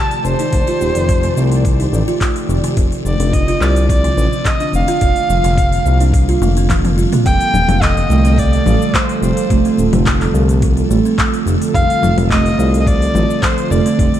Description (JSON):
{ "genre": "organic downtempo", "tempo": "107 BPM", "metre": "4/4", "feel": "straight", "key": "F mixolydian", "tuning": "A4 = 440 Hz", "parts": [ { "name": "warm kamancheh", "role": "melody", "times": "0.0-14.2 s", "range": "C5 to A5", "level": "-20 LUFS", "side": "equal", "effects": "ping-pong delay" }, { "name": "airy breathy pad", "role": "sustained chords", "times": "0.0-14.2 s", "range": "D3 to F5", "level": "-23 LUFS", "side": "right 1 dB", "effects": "chorus, sidechain pumping" }, { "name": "buzzing kalimba", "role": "arpeggios", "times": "0.0-14.0 s", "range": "C3 to F4", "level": "-19 LUFS", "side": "right 3 dB", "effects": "ping-pong delay" }, { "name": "deep house drum kit", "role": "drums", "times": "0.1-14.2 s", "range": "cabasa, congas, handclaps, hi-hat, toms", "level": "-22 LUFS", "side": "left 2 dB", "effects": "none" }, { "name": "smooth synth bass", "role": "bass", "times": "0.2-14.1 s", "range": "Eb1 to C2", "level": "-15 LUFS", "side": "equal", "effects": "tube saturation, sidechain pumping" }, { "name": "electronic kick drum", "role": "drums", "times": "0.5-14.1 s", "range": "none", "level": "-16 LUFS", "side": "equal", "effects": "none" }, { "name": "mellow tine electric piano", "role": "accompaniment", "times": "7.2-14.2 s", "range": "D3 to A4", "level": "-24 LUFS", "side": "left 1 dB", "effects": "none" } ], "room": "light reverb, digital ambience", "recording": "dark, warm production", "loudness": "-12 LUFS", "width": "side -11 dB against mid", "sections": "0.0-7.3 A section; 7.3-14.2 B section", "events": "drum fill 6.4-7.3", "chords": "0.0 F13; 2.8 Dm7/F; 5.0 Gm7/F; 7.3 F69; 11.7 Dm7/F" }